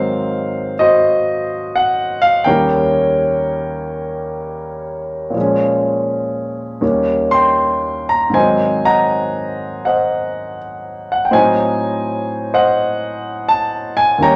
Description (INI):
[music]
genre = solo jazz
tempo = 83 BPM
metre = 4/4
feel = swing 68% on 8ths, rubato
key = unclear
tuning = A4 = 438 Hz
[part]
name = warm concert grand piano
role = solo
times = 0.0-14.4 s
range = Eb2 to C6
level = -17 LUFS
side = equal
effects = none
[sound]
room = wet large studio reverb, RT60 1.3 s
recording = none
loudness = -17 LUFS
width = mono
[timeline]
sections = 0.0-14.4 A section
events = none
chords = 0.0 Ab7; 2.5 Eb7; 5.4 Bbm7; 6.8 Eb7; 8.3 Ab7; 11.3 Adim7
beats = 0.29 1.03 1.75 | 2.46 3.18 3.90 4.63 | 5.35 6.08 6.82 7.58 | 8.35 9.11 9.86 10.60 | 11.33 12.05 12.77 13.49 | 14.20